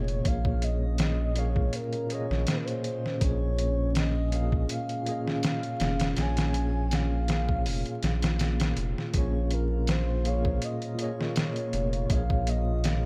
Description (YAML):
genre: trip hop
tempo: 81 BPM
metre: 4/4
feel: swing 54% on 16ths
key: Bb minor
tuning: A4 = 440 Hz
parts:
  - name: pure breathy sine lead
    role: melody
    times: 0.0-13.1 s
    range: Bb4 to Ab5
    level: -38 LUFS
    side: equal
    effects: subtle chorus, tape echo
  - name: tine electric piano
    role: accompaniment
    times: 0.0-13.1 s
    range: Bb2 to F5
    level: -36 LUFS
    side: equal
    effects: medium tremolo
  - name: deep dark ambient pad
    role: sustained chords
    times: 0.0-13.1 s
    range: Bb3 to F5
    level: -39 LUFS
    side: equal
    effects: chorus, built-in reverb
  - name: round analog bass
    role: bass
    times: 0.0-13.1 s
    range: F1 to Bb1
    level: -31 LUFS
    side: equal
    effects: tube saturation
  - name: trip hop sampler-style drum kit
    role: drums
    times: 0.1-13.0 s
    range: hi-hat, kick drum, snare drum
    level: -32 LUFS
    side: equal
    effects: none
room: light reverb, digital ambience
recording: vinyl crackle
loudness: -28 LUFS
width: mono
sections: 0.0-13.1 A section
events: none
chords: 0.0 Bbm7